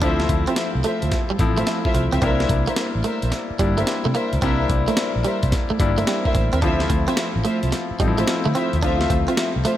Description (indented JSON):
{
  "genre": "R&B, new jack swing",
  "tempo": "109 BPM",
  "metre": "4/4",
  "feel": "swing 66% on 16ths",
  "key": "D minor",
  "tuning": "A4 = 440 Hz",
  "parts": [
    { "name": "clear grand piano", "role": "accompaniment", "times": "0.0-9.8 s", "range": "F3 to F4", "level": "-24 LUFS", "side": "left 5 dB", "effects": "none" },
    { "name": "direct-recorded clean electric guitar", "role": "riff", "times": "0.0-9.8 s", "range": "G3 to D4", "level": "-26 LUFS", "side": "right 4 dB", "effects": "lush chorus" },
    { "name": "dark studio string section", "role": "stabs", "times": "0.0-9.8 s", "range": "F4 to E5", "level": "-26 LUFS", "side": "right 1 dB", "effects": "none" },
    { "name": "vintage muted fingered electric bass", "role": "bass", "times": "0.0-9.6 s", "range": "G1 to D3", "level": "-23 LUFS", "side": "equal", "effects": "none" },
    { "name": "breakbeat sampler-style drum kit", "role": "drums", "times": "0.0-9.8 s", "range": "hi-hat, kick drum, snare drum", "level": "-24 LUFS", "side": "equal", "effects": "none" }
  ],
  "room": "light reverb, digital ambience",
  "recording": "none",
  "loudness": "-18 LUFS",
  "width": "side -12 dB against mid",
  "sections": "0.0-9.8 A section",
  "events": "none",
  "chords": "0.0 Dm9; 2.2 C7; 6.6 Dm9",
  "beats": "| 0.02 0.57 1.12 1.67 | 2.22 2.77 3.32 3.87 | 4.42 4.97 5.52 6.07 | 6.62 7.17 7.72 8.27 | 8.82 9.38"
}